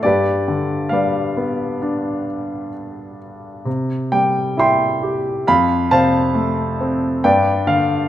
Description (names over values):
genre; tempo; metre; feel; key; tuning
classical, lyrical solo piano; 67 BPM; 4/4; rubato; unclear; A4 = 440 Hz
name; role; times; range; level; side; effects
warm grand piano; solo; 0.0-8.1 s; F2 to C6; -16 LUFS; equal; none
room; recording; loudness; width
moderate recital hall reverb, RT60 1.4 s; none; -16 LUFS; side -12 dB against mid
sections
0.0-8.1 A section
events
none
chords
0.0 G; 3.7 C; 5.5 F; 7.2 G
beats
| 0.04 0.92 1.82 2.74 | 3.66 4.58 5.46 6.35 | 7.24